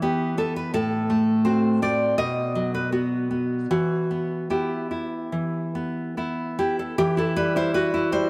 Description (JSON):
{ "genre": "romantic piece for solo classical guitar", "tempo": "70-84 BPM", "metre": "4/4", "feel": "rubato", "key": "E minor", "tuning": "A4 = 440 Hz", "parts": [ { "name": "nylon-string guitar", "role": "solo", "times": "0.0-8.3 s", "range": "A2 to E5", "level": "-24 LUFS", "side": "equal", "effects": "none" } ], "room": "moderate plate reverb, RT60 3.5 s", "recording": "heard from further back in the room", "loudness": "-24 LUFS", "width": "mono", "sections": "0.0-7.0 A section; 7.0-8.3 A section", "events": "none", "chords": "0.0 Em; 0.8 F#dim/A; 2.2 B5; 3.7 Em", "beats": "0.03 | 0.75 1.47 2.19 2.92 | 3.70 4.51 5.34 6.18 | 6.99 7.75" }